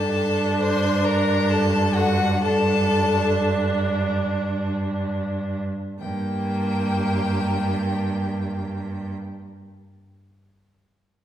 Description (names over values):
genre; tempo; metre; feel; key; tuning
classical, slow romantic movement for string quartet; free time; none; none; G minor; A4 = 440 Hz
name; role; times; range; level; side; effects
clear violin; melody; 0.0-9.1 s; F#5 to C6; -29 LUFS; left 5 dB; none
rich violin; second line; 0.0-9.1 s; F#4 to C5; -26 LUFS; left 3 dB; none
clear viola; accompaniment; 0.0-9.1 s; Bb3 to D4; -27 LUFS; right 2 dB; none
rich cello; bass; 0.0-9.1 s; G2; -24 LUFS; right 2 dB; none
room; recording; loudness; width
wet recital hall reverb, RT60 1.8 s; heard from further back in the room; -20 LUFS; side -10 dB against mid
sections
0.0-6.0 A section; 6.0-11.2 B section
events
slowing down 0.0-6.0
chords
0.0 D5/G; 6.0 Gm